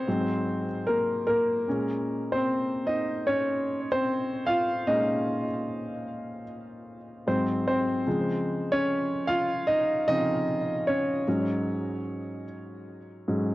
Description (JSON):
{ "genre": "R&B", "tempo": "75 BPM", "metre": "4/4", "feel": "swing 63% on 16ths", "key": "unclear", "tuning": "A4 = 439 Hz", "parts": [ { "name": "warm concert grand piano", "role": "solo", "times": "0.0-13.5 s", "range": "Ab2 to F5", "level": "-25 LUFS", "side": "equal", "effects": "cassette tape, tape echo" } ], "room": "light reverb, studio ambience", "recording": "home recording on cassette", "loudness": "-25 LUFS", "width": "side -17 dB against mid", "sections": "0.0-1.7 A section; 1.7-13.5 B section", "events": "grand piano solo 0.0-1.7, 1.7-13.5", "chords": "0.1 Ab9; 1.7 Bbm11; 7.3 Ab7; 8.1 Dbmaj9; 11.3 Ab7sus4", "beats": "0.07 0.87 | 1.67 2.47 3.27 4.07 | 4.87 5.67 6.47 7.27 | 8.07 8.87 9.67 10.47 | 11.27 12.07 12.87" }